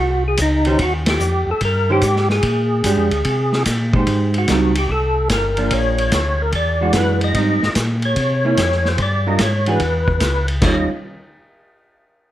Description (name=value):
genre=soul jazz organ trio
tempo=146 BPM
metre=4/4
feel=swing 67% on 8ths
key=Eb mixolydian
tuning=A4 = 435 Hz
part: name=percussive tonewheel organ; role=melody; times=0.0-10.9 s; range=Eb4 to Eb5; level=-20 LUFS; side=left 1 dB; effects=slow rotary speaker, chorus vibrato
part: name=mellow tonewheel organ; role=bass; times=0.0-10.9 s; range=G1 to C3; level=-20 LUFS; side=equal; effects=slow rotary speaker
part: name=vintage drum kit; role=drums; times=0.4-10.8 s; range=crash cymbal, hi-hat, kick drum, ride cymbal, snare drum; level=-22 LUFS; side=equal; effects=none
part: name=vintage hollow-body jazz guitar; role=accompaniment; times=0.7-10.9 s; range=Eb3 to C5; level=-20 LUFS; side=right 3 dB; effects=none
room=light reverb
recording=none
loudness=-15 LUFS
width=side -13 dB against mid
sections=0.0-4.1 A section; 4.1-10.6 B section; 10.6-12.3 C section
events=band accent 1.0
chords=0.0 Ab7; 0.8 Ebadd9; 2.4 Bb13; 4.1 Abmaj7; 4.9 C5; 5.7 Bb; 6.5 E9; 7.3 Abmaj7; 8.2 C7b9; 9.0 Gm7; 9.8 E5; 10.6 Eb9